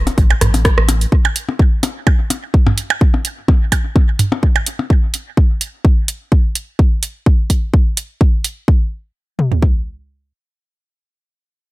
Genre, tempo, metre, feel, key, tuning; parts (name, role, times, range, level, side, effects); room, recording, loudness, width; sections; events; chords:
minimal techno; 127 BPM; 4/4; swing 54% on 16ths; A4 = 440 Hz
punchy sub bass; bass; 0.0-1.1 s; A1; -16 LUFS; equal; sidechain pumping
booming analog drum machine; drums; 0.1-8.5 s; hi-hat, rim click; -20 LUFS; right 2 dB
minimal click drum kit; percussion; 0.1-4.9 s; percussion blips, rim click, toms; -19 LUFS; right 1 dB; overdrive, dub echo
house drum kit; drums; 0.2-9.7 s; kick drum, toms; -12 LUFS; equal
little or no reverb; -13 LUFS; side -19 dB against mid
0.0-8.7 A section; 8.7-11.7 B section